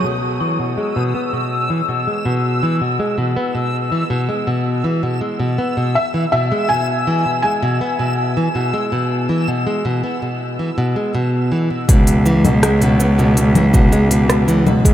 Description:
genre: folktronica.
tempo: 81 BPM.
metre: 4/4.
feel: straight.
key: unclear.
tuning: A4 = 441 Hz.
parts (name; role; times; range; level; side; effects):
nylon-string guitar; arpeggios; 0.0-14.9 s; B2 to B3; -18 LUFS; equal; low-pass filter, analog delay.
backwards swelling texture; texture; 0.0-11.9 s; E6; -26 LUFS; left 2 dB; built-in reverb, analog chorus.
felt-muted upright piano; melody; 6.0-11.1 s; E5 to G#5; -21 LUFS; left 1 dB; analog delay.
warm cello; bass; 11.9-14.9 s; C#2; -14 LUFS; equal; none.
electronic kick drum; drums; 11.9-14.9 s; none; -12 LUFS; equal; studio reverb.
organic electronic drum kit; drums; 11.9-14.9 s; cabasa, congas, hi-hat, rim click; -22 LUFS; left 1 dB; low-pass filter on perc, studio reverb, low-pass filter on hats, low-pass filter on snare.
room: moderate huge ambient reverb, RT60 9.5 s.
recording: dreamy mix soaked in reverb.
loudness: -15 LUFS.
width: side -11 dB against mid.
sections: 0.0-11.9 A section; 11.9-14.9 B section.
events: none.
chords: 0.0 E; 11.9 C#m7.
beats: | 0.04 0.78 1.52 2.26 | 3.00 3.74 4.48 5.22 | 5.96 6.70 7.44 8.18 | 8.92 9.66 10.40 11.15 | 11.89 12.63 13.37 14.11 | 14.85.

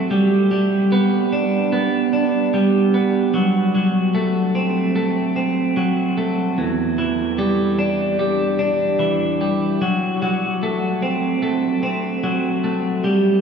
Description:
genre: rock.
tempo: 74 BPM.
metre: 4/4.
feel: straight.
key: unclear.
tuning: A4 = 441 Hz.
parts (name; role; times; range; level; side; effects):
twelve-string electric guitar; solo; 0.0-13.4 s; E2 to D4; -17 LUFS; right 1 dB; none.
room: wet cathedral reverb, RT60 6.9 s.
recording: recorded in a church or concert hall, studio reverb.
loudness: -17 LUFS.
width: side -6 dB against mid.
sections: 0.0-13.4 A section.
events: none.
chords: 0.1 G; 3.3 F#dim; 6.6 Em7; 9.8 F#dim.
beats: | 0.11 0.92 1.73 2.54 | 3.35 4.15 4.96 5.77 | 6.58 7.39 8.20 9.01 | 9.81 10.62 11.43 12.24 | 13.05.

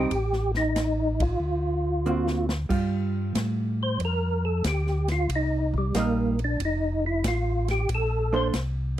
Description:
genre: soul jazz organ trio.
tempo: 93 BPM.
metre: 4/4.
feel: swing 68% on 8ths.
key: unclear.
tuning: A4 = 440 Hz.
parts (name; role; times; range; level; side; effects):
percussive tonewheel organ; melody; 0.0-8.5 s; G3 to C5; -27 LUFS; equal; chorus vibrato, fast rotary speaker, slapback echo.
vintage hollow-body jazz guitar; accompaniment; 0.0-8.5 s; D3 to C5; -28 LUFS; right 4 dB; none.
mellow tonewheel organ; bass; 0.0-9.0 s; F1 to A2; -27 LUFS; equal; slow rotary speaker.
swinging big-band drum kit; drums; 0.1-8.7 s; crash cymbal, hi-hat, kick drum, ride cymbal, snare drum; -32 LUFS; left 1 dB; none.
room: light reverb.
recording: dry, close 1970s-style studio recording.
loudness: -23 LUFS.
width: side -12 dB against mid.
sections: 0.0-2.7 A section; 2.7-9.0 B section.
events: band accent 1.1-1.4; drum fill 2.1-2.7; tonewheel organ solo 2.7-9.0.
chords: 0.1 F9/A; 1.4 D7alt; 2.7 Gsus2; 5.3 Cm7; 6.6 F; 7.9 Bbmaj9.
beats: | 0.11 0.76 1.41 2.06 | 2.71 3.35 4.00 4.65 | 5.30 5.95 6.59 7.24 | 7.89 8.54.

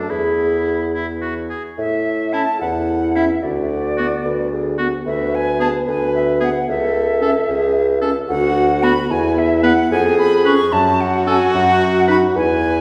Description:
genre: quick classical-period movement for wind quintet.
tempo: 74 BPM (dotted quarters).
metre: 6/8.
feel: straight.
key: A major.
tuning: A4 = 440 Hz.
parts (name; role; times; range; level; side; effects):
concert flute; melody; 0.0-12.8 s; D5 to C#6; -24 LUFS; equal; none.
clear oboe; second line; 0.0-12.2 s; D4 to B4; -28 LUFS; equal; none.
dark clarinet; accompaniment; 0.0-12.2 s; B3 to G#4; -27 LUFS; equal; none.
warm French horn; accompaniment; 0.0-12.8 s; A3 to B4; -23 LUFS; equal; none.
mellow bassoon; bass; 0.0-12.8 s; C#2 to A2; -22 LUFS; equal; none.
room: wet recital hall reverb, RT60 1.7 s.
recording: heard from further back in the room.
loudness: -17 LUFS.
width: mono.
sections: 0.0-1.8 A section; 1.8-12.8 B section.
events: none.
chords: 0.1 E; 1.8 A5; 3.4 Bm/D; 5.1 Dsus2; 6.7 A/C#; 8.3 Bm/D; 9.1 E5; 9.9 C#7/E#; 10.7 F#m; 11.5 N.C..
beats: | 0.09 0.94 | 1.78 2.61 | 3.43 4.25 | 5.06 5.87 | 6.68 7.48 | 8.29 9.10 | 9.91 10.72 | 11.54 12.37.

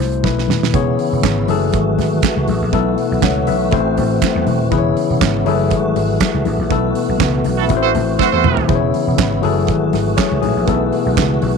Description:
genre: disco.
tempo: 121 BPM.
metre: 4/4.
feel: straight.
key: E major.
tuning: A4 = 439 Hz.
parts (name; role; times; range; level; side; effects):
overdriven tine electric piano; accompaniment; 0.0-11.6 s; B2 to F#5; -18 LUFS; left 12 dB; none.
vintage slap bass; bass; 0.0-11.6 s; D#1 to E2; -19 LUFS; right 2 dB; none.
damped 70s drum kit; drums; 0.0-11.5 s; handclaps, hi-hat, kick drum, snare drum, toms; -20 LUFS; right 7 dB; none.
congas; percussion; 0.2-11.5 s; none; -25 LUFS; left 13 dB; none.
tonewheel organ; sustained chords; 0.7-11.6 s; C#3 to F#4; -21 LUFS; right 2 dB; overdrive, chorus vibrato, slow rotary speaker.
clear horn section; stabs; 7.6-8.7 s; E4 to C5; -17 LUFS; right 14 dB; none.
room: light reverb, small room ambience.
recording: 1960s-style stereo with parts hard left and right.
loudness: -13 LUFS.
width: side -5 dB against mid.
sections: 0.7-11.6 A section.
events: drum fill 0.2-0.7, 8.2-8.7; band accent 6.7-8.7.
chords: 0.2 B7sus4; 0.7 E6; 1.5 F#m9; 2.7 B7sus4; 3.7 Am6; 4.7 E6; 5.5 F#m9; 6.7 B7sus4; 7.7 Am6; 8.7 E6; 9.4 F#m9; 10.7 B7sus4.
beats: 0.24 | 0.74 1.24 1.73 2.23 | 2.73 3.23 3.72 4.22 | 4.72 5.21 5.71 6.21 | 6.70 7.20 7.70 8.19 | 8.69 9.19 9.68 10.18 | 10.68 11.17.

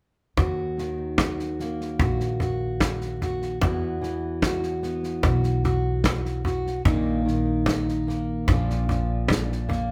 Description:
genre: acoustic folk duo or small band.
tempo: 74 BPM.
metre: 4/4.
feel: straight.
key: Eb minor.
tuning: A4 = 440 Hz.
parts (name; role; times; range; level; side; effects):
fingerpicked plugged-in steel-string acoustic guitar; accompaniment; 0.4-9.9 s; Eb2 to Gb4; -29 LUFS; equal; none.
upright bass; bass; 0.4-9.9 s; Bb1 to E2; -31 LUFS; equal; none.
natural country drum kit; drums; 0.4-9.8 s; kick drum, snare drum; -31 LUFS; equal; none.
cajon; percussion; 0.4-9.9 s; none; -28 LUFS; equal; none.
room: light reverb.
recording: band playing live in one room.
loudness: -25 LUFS.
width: mono.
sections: 0.4-9.9 A section.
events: none.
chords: 0.4 Ebm; 3.6 Esus2; 6.9 Bbsus4; 8.5 Bb.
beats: | 0.37 1.19 2.00 2.81 | 3.62 4.43 5.24 6.05 | 6.86 7.67 8.48 9.29.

